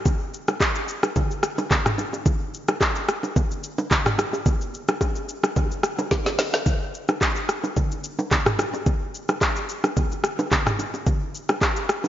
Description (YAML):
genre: amapiano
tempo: 109 BPM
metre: 4/4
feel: swing 55% on 16ths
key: none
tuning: none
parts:
  - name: afro-pop drum kit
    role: drums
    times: 0.1-12.1 s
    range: handclaps, hi-hat, kick drum, rim click, shaker, snare drum, toms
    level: -22 LUFS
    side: equal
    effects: none
  - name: congas and bongos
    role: percussion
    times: 0.1-12.1 s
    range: none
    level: -27 LUFS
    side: right 2 dB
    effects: none
room: moderate lush hall reverb, RT60 1.7 s, digital ambience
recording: dreamy mix soaked in reverb, nothing above 7.5 kHz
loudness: -21 LUFS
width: side -12 dB against mid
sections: 0.0-12.1 A section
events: drum fill 6.1-6.7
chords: none